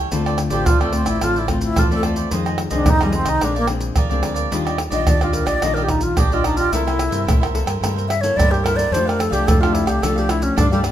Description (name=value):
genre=samba and choro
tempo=109 BPM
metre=4/4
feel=straight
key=F major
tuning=A4 = 440 Hz
part: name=cavaquinho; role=accompaniment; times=0.0-10.9 s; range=D4 to F5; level=-26 LUFS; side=right 5 dB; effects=none
part: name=nylon-string guitar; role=accompaniment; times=0.0-10.9 s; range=F2 to A4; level=-24 LUFS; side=left 4 dB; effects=none
part: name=deep dub fingered electric bass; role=bass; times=0.0-10.9 s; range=A1 to G2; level=-24 LUFS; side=equal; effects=none
part: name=maracas, surdo, pandeiro and tamborim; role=percussion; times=0.1-10.9 s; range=none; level=-20 LUFS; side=right 1 dB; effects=none
part: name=breathy alto flute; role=melody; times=0.5-10.8 s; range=G3 to E5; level=-21 LUFS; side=equal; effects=none
room=wet large studio reverb, RT60 1.1 s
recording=minimal, uncompressed stereo recording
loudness=-16 LUFS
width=side -11 dB against mid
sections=0.0-10.9 A section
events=alto flute solo 0.0-10.9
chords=0.1 Dm7; 2.3 Fm7; 3.4 Bb9; 4.5 Ebmaj9; 6.7 C6; 8.9 F69